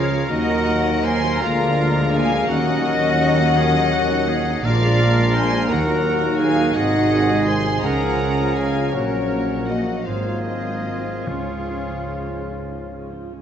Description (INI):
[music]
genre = classical, slow romantic movement for symphony orchestra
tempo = 48-58 BPM (dotted quarters)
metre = 6/8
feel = rubato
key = Db major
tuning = A4 = 438 Hz
[part]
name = warm studio violin section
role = melody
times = 0.0-12.5 s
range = Db5 to C6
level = -26 LUFS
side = left 3 dB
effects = none
[part]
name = bright silver concert flute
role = second line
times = 0.0-12.4 s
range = Ab4 to Ab5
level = -29 LUFS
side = left 2 dB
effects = none
[part]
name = clear clarinet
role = second line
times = 0.0-12.5 s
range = Db4 to C5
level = -29 LUFS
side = left 1 dB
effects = none
[part]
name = clear oboe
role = second line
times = 0.0-13.1 s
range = F4 to Bb4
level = -30 LUFS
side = equal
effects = none
[part]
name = warm studio violin section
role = second line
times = 0.0-12.5 s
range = Ab4 to Ab5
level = -29 LUFS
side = left 2 dB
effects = none
[part]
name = warm studio viola section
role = accompaniment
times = 0.0-13.4 s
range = Eb3 to Ab4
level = -29 LUFS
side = right 1 dB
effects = none
[part]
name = mellow French horn section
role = sustained chords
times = 0.0-13.4 s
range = Gb3 to F4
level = -26 LUFS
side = left 2 dB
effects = none
[part]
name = warm trombone section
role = sustained chords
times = 0.0-13.3 s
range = Ab2 to Gb3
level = -30 LUFS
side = right 4 dB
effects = none
[part]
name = clear trumpet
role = stabs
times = 0.0-13.4 s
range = F4 to Bb4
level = -29 LUFS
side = right 1 dB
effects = none
[part]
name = rich studio double bass section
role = bass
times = 0.0-13.4 s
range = Ab1 to Eb2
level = -27 LUFS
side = right 3 dB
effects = none
[part]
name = warm studio cello section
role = bass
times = 0.0-13.4 s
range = Eb2 to Eb3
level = -25 LUFS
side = equal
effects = none
[part]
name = warm tuba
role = bass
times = 0.0-13.4 s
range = Ab1 to Eb2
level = -29 LUFS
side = right 3 dB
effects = none
[part]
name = timpani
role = percussion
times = 11.3-12.5 s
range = Db3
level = -37 LUFS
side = left 1 dB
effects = none
[sound]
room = wet scoring stage reverb, RT60 1.8 s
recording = nothing above 7.7 kHz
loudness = -17 LUFS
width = side -8 dB against mid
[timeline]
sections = 0.0-13.4 A section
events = none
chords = 0.3 Ebm; 1.4 Bb7/D; 2.5 Ebm7; 4.6 Bb7; 5.7 Ebm; 6.8 Ab7; 7.8 Db; 8.9 Gb/Bb; 10.1 Ab13; 11.3 Db